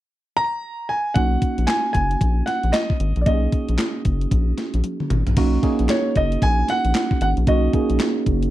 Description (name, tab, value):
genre	R&B, new jack swing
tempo	114 BPM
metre	4/4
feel	swing 61% on 16ths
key	B major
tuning	A4 = 440 Hz
part	warm concert grand piano	melody	0.4-8.0 s	C#5 to A#5	-23 LUFS	right 1 dB	slapback echo
part	tine electric piano	accompaniment	1.1-8.5 s	A#3 to G#4	-24 LUFS	right 3 dB	overdrive, lush chorus
part	round analog bass	bass	1.2-8.5 s	F#1 to B1	-20 LUFS	left 1 dB	none
part	gated 80s digital drum machine	drums	1.2-8.5 s	crash cymbal, handclaps, hi-hat, kick drum, snare drum, toms	-22 LUFS	left 1 dB	gated reverb, gated reverb snare, overdrive
room	little or no reverb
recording	dry, close 1970s-style studio recording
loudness	-18 LUFS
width	side -14 dB against mid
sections	0.0-1.2 A section; 1.2-5.4 B section; 5.4-8.5 C section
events	drum fill 4.8-5.4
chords	0.0 N.C.; 1.2 Bmaj7 (rootless); 5.4 Bmaj7